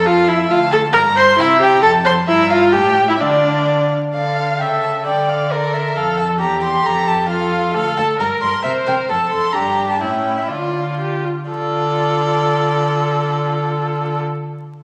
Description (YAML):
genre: quick classical-period movement for string quartet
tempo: 117-136 BPM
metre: 2/4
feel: straight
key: D minor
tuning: A4 = 440 Hz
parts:
  - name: warm violin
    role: melody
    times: 0.0-14.2 s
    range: D5 to C6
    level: -24 LUFS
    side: equal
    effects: none
  - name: clear viola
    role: accompaniment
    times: 0.0-14.2 s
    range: C#4 to C5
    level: -21 LUFS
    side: equal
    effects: none
  - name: rich cello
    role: bass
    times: 0.0-14.2 s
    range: D2 to D3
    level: -26 LUFS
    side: equal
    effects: none
  - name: warm violin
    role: second line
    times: 0.1-14.2 s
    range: E4 to C6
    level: -20 LUFS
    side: equal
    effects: none
room: wet recital hall reverb, RT60 1.6 s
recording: vinyl crackle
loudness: -16 LUFS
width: mono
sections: 0.0-4.1 A section; 4.1-11.5 A section; 11.5-13.4 B section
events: slowing down 9.1-11.5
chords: 0.0 F; 0.5 Dm; 0.9 Gm; 1.4 C7; 1.8 F; 2.3 Edim/G; 2.7 Emadd11/A; 3.2 Dm; 4.6 A/C#; 5.1 D5; 6.0 F; 6.4 C/E; 6.9 F; 7.7 Dm; 8.2 Gm; 8.6 C7(no3); 9.1 F; 9.5 Gm; 10.0 A7; 10.5 Dm